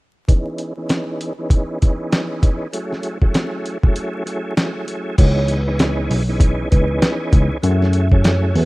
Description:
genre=hip hop, boom-bap hip-hop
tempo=98 BPM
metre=4/4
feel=swing 61% on 16ths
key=C# minor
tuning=A4 = 439 Hz
part: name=tonewheel organ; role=accompaniment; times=0.3-8.7 s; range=E3 to G#4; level=-24 LUFS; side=right 1 dB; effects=chorus vibrato, fast rotary speaker, cassette tape, high-pass filter, low-pass filter
part: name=dusty soul sampler-style drum kit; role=drums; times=0.3-8.7 s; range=crash cymbal, hi-hat, kick drum, snare drum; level=-16 LUFS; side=equal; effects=none
part: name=vibraphone with soft mallets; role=melody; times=5.2-8.7 s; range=B4 to E5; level=-26 LUFS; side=right 2 dB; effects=high-pass filter, low-pass filter, digital delay
part: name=tine electric piano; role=bass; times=5.2-8.7 s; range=B1 to F#2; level=-17 LUFS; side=equal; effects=auto-pan
room=digital ambience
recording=rough home demo mix, vinyl crackle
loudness=-16 LUFS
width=side -21 dB against mid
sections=0.3-5.2 A section; 5.2-8.7 B section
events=filter sweep on tonewheel organ 0.3-5.2; break 4.0-5.2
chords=0.3 C#m9; 2.7 F#m7; 5.2 C#m9; 7.6 F#m7

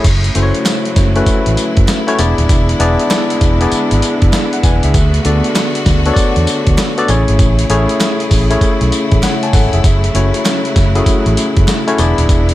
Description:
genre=R&B, new jack swing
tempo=98 BPM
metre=4/4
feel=swing 64% on 16ths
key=F# minor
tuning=A4 = 440 Hz
part: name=tine electric piano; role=accompaniment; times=0.0-12.5 s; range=A3 to A5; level=-16 LUFS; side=left 2 dB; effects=none
part: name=bright studio string section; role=sustained chords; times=0.0-12.5 s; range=C#3 to G#4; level=-21 LUFS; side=right 2 dB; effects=none
part: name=vintage muted fingered electric bass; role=bass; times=0.0-12.5 s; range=D#1 to E2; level=-14 LUFS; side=equal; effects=none
part: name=dusty soul sampler-style drum kit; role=drums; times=0.0-12.5 s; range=crash cymbal, hi-hat, kick drum, snare drum, tambourine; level=-15 LUFS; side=equal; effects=overdrive
part: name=group handclap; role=percussion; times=0.7-11.9 s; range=none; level=-28 LUFS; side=right 7 dB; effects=none
room=digital ambience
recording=none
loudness=-10 LUFS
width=side -15 dB against mid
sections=0.0-12.5 A section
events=tine electric piano fill 8.6-9.8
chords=0.0 F#m7; 2.2 E7; 4.9 D6; 7.1 Amaj7; 9.8 F#m7; 12.0 E7

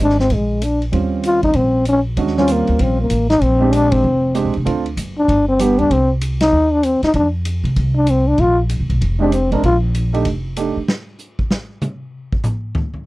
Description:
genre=jazz, small-group swing and bop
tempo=193 BPM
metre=4/4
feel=swing 63% on 8ths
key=Bb mixolydian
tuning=A4 = 440 Hz
part: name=growling trombone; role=melody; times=0.0-9.8 s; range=Ab3 to F4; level=-15 LUFS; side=left 1 dB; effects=none
part: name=warm grand piano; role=accompaniment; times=0.0-5.9, 9.2-10.8 s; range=G3 to Bb4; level=-20 LUFS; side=right 5 dB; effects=none
part: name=upright bass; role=bass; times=0.0-10.8 s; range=F1 to C3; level=-18 LUFS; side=equal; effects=none
part: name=vintage drum kit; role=drums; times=0.1-13.0 s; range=hi-hat, kick drum, ride cymbal, snare drum, toms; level=-24 LUFS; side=equal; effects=none
room=little or no reverb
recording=none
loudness=-14 LUFS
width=side -19 dB against mid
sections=0.0-10.9 A section; 10.9-13.1 B section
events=band accent 3.9, 6.4; drum solo 10.9-13.1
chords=0.3 Bb7; 0.9 Eb13; 3.4 Bb13; 4.7 Dm7; 5.3 G; 5.9 Cm; 7.1 F5; 8.4 Bbadd9; 10.3 F13; 10.9 N.C.

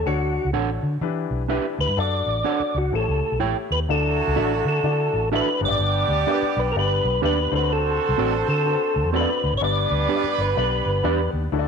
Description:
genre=soul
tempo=126 BPM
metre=4/4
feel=swing 62% on 8ths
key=D major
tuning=A4 = 440 Hz
part: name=percussive tonewheel organ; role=melody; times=0.0-11.3 s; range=F#4 to D5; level=-23 LUFS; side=equal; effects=overdrive, chorus vibrato, fast rotary speaker
part: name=vintage muted fingered electric bass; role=bass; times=0.0-11.7 s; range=G1 to E3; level=-24 LUFS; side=equal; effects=none
part: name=warm upright piano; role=accompaniment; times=0.1-11.7 s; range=G2 to D5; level=-28 LUFS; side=left 12 dB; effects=none
part: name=mellow electric guitar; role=stabs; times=0.5-11.2 s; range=C4 to G5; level=-28 LUFS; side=right 13 dB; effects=spring reverb
part: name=mellow horn section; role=second line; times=3.9-11.7 s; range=F#3 to C5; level=-28 LUFS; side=right 14 dB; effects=none
room=light reverb, small room ambience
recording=1960s-style stereo with parts hard left and right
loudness=-20 LUFS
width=side -6 dB against mid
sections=0.0-3.9 A section; 3.9-11.7 B section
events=tonewheel organ solo 0.0-3.9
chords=0.1 Dmaj7; 1.0 Em7; 2.0 Dmaj7; 2.9 A7; 3.9 Dadd9; 5.6 G; 7.5 D7; 9.6 G

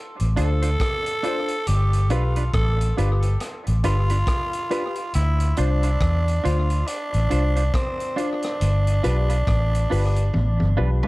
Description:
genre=roots reggae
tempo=69 BPM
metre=4/4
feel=swing 60% on 16ths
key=D dorian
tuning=A4 = 440 Hz
part: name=vintage muted fingered electric bass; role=bass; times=0.2-11.0 s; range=G1 to E2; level=-20 LUFS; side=equal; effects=none
part: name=vintage drum kit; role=drums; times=0.2-11.1 s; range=hi-hat, kick drum, rim click, toms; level=-29 LUFS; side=equal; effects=analog delay
part: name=growling tenor saxophone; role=melody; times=0.4-11.1 s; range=C4 to A4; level=-27 LUFS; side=right 1 dB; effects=dub echo
part: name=semi-hollow electric guitar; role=accompaniment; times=0.4-11.1 s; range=D4 to C5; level=-33 LUFS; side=right 5 dB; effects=vibrato effect, dub echo
part: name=dark upright piano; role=stabs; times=0.4-11.0 s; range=D4 to C5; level=-29 LUFS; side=left 3 dB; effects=none
room=small room ambience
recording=echo-heavy mix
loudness=-19 LUFS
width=side -21 dB against mid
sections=0.0-11.1 A section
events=drum fill 10.3-11.1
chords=0.0 Dm7; 1.7 G7; 5.1 Dm7; 8.6 G7

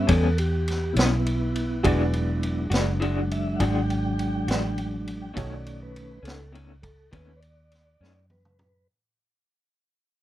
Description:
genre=slow blues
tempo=68 BPM (dotted quarters)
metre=12/8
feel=straight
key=unclear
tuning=A4 = 440 Hz
part: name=warm upright piano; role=accompaniment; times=0.0-8.8 s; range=D#4 to D5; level=-31 LUFS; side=right 4 dB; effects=none
part: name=mellow tonewheel organ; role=sustained chords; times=0.0-8.9 s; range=D#3 to G5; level=-29 LUFS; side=right 1 dB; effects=slow rotary speaker
part: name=vintage muted fingered electric bass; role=bass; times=0.0-8.9 s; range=E1 to F#2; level=-26 LUFS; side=equal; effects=none
part: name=electric guitar through a small old amp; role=accompaniment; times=0.1-8.2 s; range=A2 to F#4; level=-27 LUFS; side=left 3 dB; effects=tremolo
part: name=vintage drum kit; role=drums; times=0.1-8.7 s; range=kick drum, ride cymbal, snare drum, toms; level=-29 LUFS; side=equal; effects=none
room=little or no reverb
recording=rough home demo mix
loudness=-23 LUFS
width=side -14 dB against mid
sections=0.0-8.9 A section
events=fade-out 0.0-8.9; tonewheel organ solo 0.0-8.9; drum fill 8.0-8.9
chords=0.0 A9; 1.8 E9; 5.4 B9

